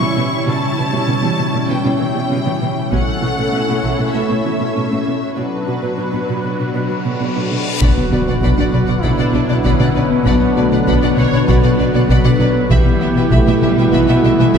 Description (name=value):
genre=cinematic, hybrid orchestral and electronic film score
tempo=98 BPM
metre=4/4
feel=straight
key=B minor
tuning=A4 = 440 Hz
part: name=warm symphonic violin section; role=melody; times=0.0-14.6 s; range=B4 to C#6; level=-26 LUFS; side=left 4 dB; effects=none
part: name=warm symphonic viola section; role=accompaniment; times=0.0-14.6 s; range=E3 to C#5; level=-23 LUFS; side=right 1 dB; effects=none
part: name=warm analog pad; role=sustained chords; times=0.0-14.6 s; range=D3 to C#5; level=-21 LUFS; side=equal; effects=chorus
part: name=harp-like synth pluck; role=arpeggios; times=0.0-14.6 s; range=C#3 to B4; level=-23 LUFS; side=right 1 dB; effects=chorus, phaser
part: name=rich symphonic cello section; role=bass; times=0.0-14.6 s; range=B2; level=-21 LUFS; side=right 2 dB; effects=none
part: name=taiko ensemble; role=drums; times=2.9-4.1, 7.8-14.6 s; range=none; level=-20 LUFS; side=left 1 dB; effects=none
part: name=reverse cymbal and impact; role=sound effects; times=6.8-10.3 s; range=none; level=-25 LUFS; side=left 1 dB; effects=none
part: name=mellow duduk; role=melody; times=7.8-14.6 s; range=D4 to B4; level=-23 LUFS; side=right 2 dB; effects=ping-pong delay
part: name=rich symphonic violin section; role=second line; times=7.8-14.6 s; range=G4 to F#5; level=-25 LUFS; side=left 2 dB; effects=none
part: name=clear French horn section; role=sustained chords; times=7.8-14.6 s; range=D3 to E4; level=-22 LUFS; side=left 2 dB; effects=none
part: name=clear trombone section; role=sustained chords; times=7.8-14.6 s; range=B2 to F#3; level=-24 LUFS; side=right 3 dB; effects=none
part: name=round analog bass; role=riff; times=7.8-14.6 s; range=B2 to B3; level=-18 LUFS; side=left 3 dB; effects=none
part: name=rich studio double bass section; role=bass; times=7.8-14.6 s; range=B1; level=-23 LUFS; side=right 2 dB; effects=none
room=wet scoring stage reverb, RT60 2.2 s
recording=heard from further back in the room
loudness=-13 LUFS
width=side -7 dB against mid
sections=0.0-7.8 A section; 7.8-14.6 A section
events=reverse cymbal 6.8-7.8; impact 7.8-10.3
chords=0.0 C#dim/B; 2.9 A/B; 5.4 Bm; 12.7 Em/B